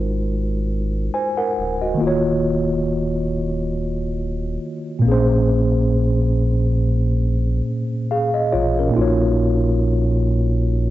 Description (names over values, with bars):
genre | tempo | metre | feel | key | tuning
lo-fi hip hop | 69 BPM | 4/4 | swing 56% on 16ths | Eb dorian | A4 = 440 Hz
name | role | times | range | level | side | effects
mellow tine electric piano | accompaniment | 0.0-10.9 s | Bb2 to Ab5 | -19 LUFS | equal | medium stereo tremolo, cassette tape, low-pass filter
sub bass with octave | bass | 0.0-10.9 s | D1 to Bb1 | -22 LUFS | equal | none
room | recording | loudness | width
light reverb | home recording on cassette, nothing above 7.9 kHz | -17 LUFS | side -15 dB against mid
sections
0.0-10.9 A section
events
none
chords
0.0 Ab13; 2.0 Ebm9; 5.0 Bbm7; 9.0 Ebm9/Bb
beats
0.27 1.14 | 2.00 2.87 3.74 4.61 | 5.48 6.35 7.22 8.09 | 8.96 9.83 10.70